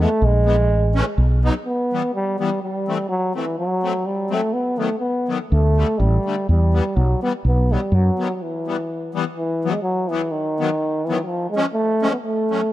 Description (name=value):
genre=alpine folk, alpine dance band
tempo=124 BPM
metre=2/4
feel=swing 55% on 8ths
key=E minor, E major from 9.4 s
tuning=A4 = 440 Hz
part: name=clear euphonium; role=melody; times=0.0-12.7 s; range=D#3 to B3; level=-21 LUFS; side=equal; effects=digital delay
part: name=musette accordion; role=accompaniment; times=0.0-12.6 s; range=D3 to D#4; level=-25 LUFS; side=left 4 dB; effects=none
part: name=mellow fretless electric bass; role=bass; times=0.0-1.5, 5.5-8.1 s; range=A1 to F#2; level=-16 LUFS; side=equal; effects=none
room=light reverb, small room ambience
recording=dark, warm production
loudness=-18 LUFS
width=side -14 dB against mid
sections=0.0-1.7 A section; 1.7-9.4 B section; 9.4-12.7 C section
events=break 8.4-9.4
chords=0.0 E; 0.7 A; 1.2 B; 1.7 Em; 2.6 Am7; 3.6 F#dim; 4.5 B; 5.5 Dsus4; 6.5 Em; 7.4 B; 8.4 Em; 9.4 Esus2; 10.3 B/D#; 11.3 C#